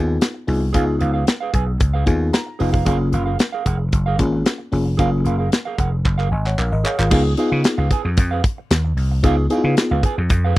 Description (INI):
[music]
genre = early-eighties boogie funk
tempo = 113 BPM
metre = 4/4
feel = straight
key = unclear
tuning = A4 = 443 Hz
[part]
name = FM electric piano with soft pad layer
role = accompaniment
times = 0.0-10.0 s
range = A#3 to A#5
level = -22 LUFS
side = left 2 dB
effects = chorus, tremolo
[part]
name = vintage slap bass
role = bass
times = 0.0-10.5 s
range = E#1 to C#3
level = -19 LUFS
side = equal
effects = none
[part]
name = mellow electric guitar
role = riff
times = 0.1-10.6 s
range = G#4 to G#5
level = -25 LUFS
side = right 6 dB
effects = lush chorus
[part]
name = modern studio drum kit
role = drums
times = 0.2-10.6 s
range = crash cymbal, handclaps, hi-hat, kick drum, snare drum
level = -18 LUFS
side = equal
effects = none
[sound]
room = little or no reverb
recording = dry, close 1970s-style studio recording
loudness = -16 LUFS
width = side -18 dB against mid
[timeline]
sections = 0.0-7.1 A section; 7.1-10.6 B section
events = FM electric piano fill 1.8-2.9; drum fill 6.1-7.1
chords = 0.0 C#7; 2.9 F#maj9; 7.1 C#7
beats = 0.21 | 0.74 1.27 1.80 2.33 | 2.87 3.40 3.93 4.46 | 4.99 5.52 6.05 6.58 | 7.11 7.64 8.18 8.71 | 9.24 9.77 10.30